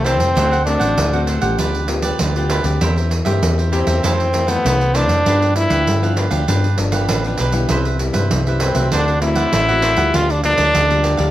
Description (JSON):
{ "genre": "samba and choro", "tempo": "98 BPM", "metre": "4/4", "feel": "straight", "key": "unclear", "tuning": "A4 = 441 Hz", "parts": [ { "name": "stopped French horn", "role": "melody", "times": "0.0-11.3 s", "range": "B3 to F4", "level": "-17 LUFS", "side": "equal", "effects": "plate reverb" }, { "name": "cavaquinho", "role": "accompaniment", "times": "0.0-11.3 s", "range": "D4 to F#5", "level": "-25 LUFS", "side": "right 4 dB", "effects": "none" }, { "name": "nylon-string guitar", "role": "accompaniment", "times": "0.0-11.3 s", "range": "F2 to G4", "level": "-24 LUFS", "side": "left 4 dB", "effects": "none" }, { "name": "hollow-body short-scale fingered electric bass", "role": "bass", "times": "0.0-11.3 s", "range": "G1 to G2", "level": "-19 LUFS", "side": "equal", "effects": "none" }, { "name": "pandeiro", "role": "percussion", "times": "0.1-11.3 s", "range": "none", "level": "-22 LUFS", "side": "right 3 dB", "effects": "none" } ], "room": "moderate large studio reverb, RT60 0.9 s", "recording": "none", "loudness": "-14 LUFS", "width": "side -14 dB against mid", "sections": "0.0-11.3 A section", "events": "none", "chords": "0.4 D7; 1.6 G7/D; 2.8 C7/E; 4.0 Fmaj7; 5.3 G7; 7.7 Cmaj7; 8.9 D7; 10.1 Gm7/D" }